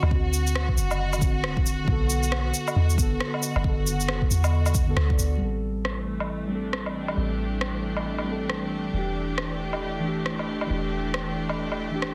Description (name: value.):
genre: future garage.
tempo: 136 BPM.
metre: 4/4.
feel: swing 61% on 16ths.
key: A dorian.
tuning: A4 = 437 Hz.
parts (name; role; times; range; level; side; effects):
muted felt-like synth keys; accompaniment; 0.0-12.1 s; D3 to D5; -33 LUFS; equal; chorus, sidechain pumping, tape echo.
bright symphonic string section; sustained chords; 0.0-12.1 s; E3 to G4; -35 LUFS; equal; sidechain pumping, low-pass filter.
soft 808-style bass; bass; 0.0-12.1 s; D1 to E2; -30 LUFS; equal; sidechain pumping.
electronic woodblock, shaker and rim click; drums; 0.0-12.1 s; none; -33 LUFS; equal; low-pass filter on perc, soft clipping on snare, low-pass filter on snare, low-pass filter on room.
electronic kick drum; drums; 0.1-5.2 s; none; -27 LUFS; equal; none.
room: light reverb.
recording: dense, heavily limited modern master.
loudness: -26 LUFS.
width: mono.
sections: 0.0-5.4 A section; 5.4-12.1 B section.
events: band accent 5.0; filter sweep on string section 5.4-12.1.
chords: 0.0 D7; 1.9 Bm7; 5.4 Am7; 8.9 Em7.